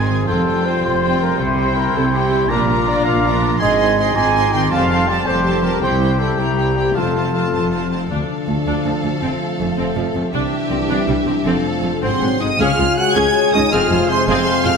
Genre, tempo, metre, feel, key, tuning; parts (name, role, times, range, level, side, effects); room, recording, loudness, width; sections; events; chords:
cinematic; 107 BPM (dotted quarters); 6/8; straight; F major; A4 = 440 Hz
rich symphonic violin section; melody; 0.0-14.8 s; E5 to Ab6; -26 LUFS; equal
rich symphonic violin section; second line; 0.0-14.8 s; Eb4 to F5; -28 LUFS; left 1 dB
silver concert flute; second line; 0.0-7.9, 12.6-14.8 s; Ab5 to D6; -27 LUFS; left 2 dB
warm clarinet; second line; 0.0-7.9, 12.6-14.8 s; E4 to A4; -27 LUFS; left 2 dB
warm oboe; second line; 0.0-7.9, 12.0-14.8 s; C5 to Bb5; -25 LUFS; equal
clear symphonic viola section; accompaniment; 0.0-14.7 s; F3 to Ab4; -26 LUFS; right 1 dB
mellow French horn section; sustained chords; 0.0-7.9, 12.0-14.8 s; Eb3 to Ab4; -23 LUFS; left 6 dB
concert harp; arpeggios; 0.0-14.8 s; F2 to C5; -25 LUFS; left 9 dB
warm trumpet section; stabs; 0.0-7.9, 12.0-14.7 s; F4 to A5; -21 LUFS; right 3 dB
clear symphonic double bass section; bass; 0.0-14.7 s; F1 to D2; -24 LUFS; right 3 dB
rich symphonic cello section; bass; 0.0-14.7 s; C2 to C3; -23 LUFS; right 2 dB
bright trombone section; sustained chords; 8.1-14.8 s; C3 to D4; -24 LUFS; right 5 dB
moderate scoring stage reverb, RT60 1.8 s; -15 LUFS; side -5 dB against mid
0.0-8.1 A section; 8.1-12.6 B section; 12.6-14.8 C section
0.3 Fadd9; 1.4 C; 2.5 Bb; 3.6 Ab; 4.7 Fadd9; 5.8 C; 7.0 F; 8.1 Dm; 9.2 F; 10.3 Cadd9; 11.5 F; 12.0 Ab7; 12.6 Db; 13.7 Fm